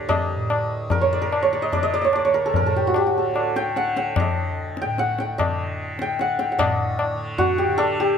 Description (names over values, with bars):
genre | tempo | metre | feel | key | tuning
indian classical, Hindustani | 148 BPM | 4/4 | straight | D raga bhairav | A4 = 440 Hz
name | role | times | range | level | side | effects
santur | melody | 0.0-8.2 s | F#4 to G5 | -22 LUFS | right 1 dB | none
tanpura | drone | 0.0-8.2 s | D2 to D3 | -30 LUFS | right 2 dB | none
tabla | percussion | 0.1-7.9 s | none | -24 LUFS | left 4 dB | none
room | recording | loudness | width
light reverb | close, detailed microphones | -19 LUFS | side -7 dB against mid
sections
0.0-6.6 A section; 6.6-8.2 B section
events
none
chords
none